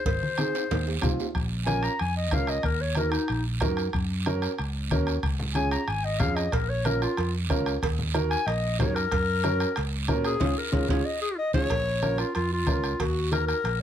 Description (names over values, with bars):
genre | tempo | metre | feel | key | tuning
latin, cumbia | 186 BPM | 4/4 | straight | Bb minor | A4 = 441 Hz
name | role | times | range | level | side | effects
warm clarinet | melody | 0.0-3.4, 5.5-13.8 s | Eb4 to Bb5 | -29 LUFS | left 3 dB | none
fingered electric bass | bass | 0.1-13.8 s | Ab1 to Bb2 | -29 LUFS | equal | none
bombo | percussion | 0.1-13.8 s | none | -31 LUFS | equal | none
congas | percussion | 0.1-13.8 s | none | -33 LUFS | left 2 dB | none
cowbell and timbales | percussion | 0.1-1.3, 6.5-13.8 s | none | -34 LUFS | right 6 dB | none
guiro | percussion | 0.1-13.8 s | none | -39 LUFS | right 7 dB | none
dark upright piano | accompaniment | 0.4-13.6 s | C4 to Bb4 | -30 LUFS | right 2 dB | none
room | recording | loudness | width
light reverb | close, detailed microphones | -24 LUFS | side -10 dB against mid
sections
0.0-1.4 A section; 1.4-11.7 B section; 11.7-13.8 C section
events
drum fill 0.5-1.4, 11.1-11.7; clarinet solo 1.4-11.7; band accent 10.4-11.7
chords
0.0 Ab; 1.4 Bbm; 2.6 Ebm; 3.9 Gb; 5.2 Db; 6.5 Bbm; 7.8 Ebm; 9.1 Gb; 10.4 Db; 11.7 Bbm; 13.0 Ebm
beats
| 0.06 0.39 0.71 1.03 | 1.35 1.68 2.00 2.33 | 2.65 2.97 3.30 3.62 | 3.94 4.27 4.59 4.91 | 5.24 5.56 5.88 6.21 | 6.53 6.86 7.18 7.50 | 7.83 8.15 8.47 8.80 | 9.12 9.44 9.77 10.09 | 10.41 10.73 11.06 11.38 | 11.71 12.03 12.35 12.68 | 13.00 13.32 13.65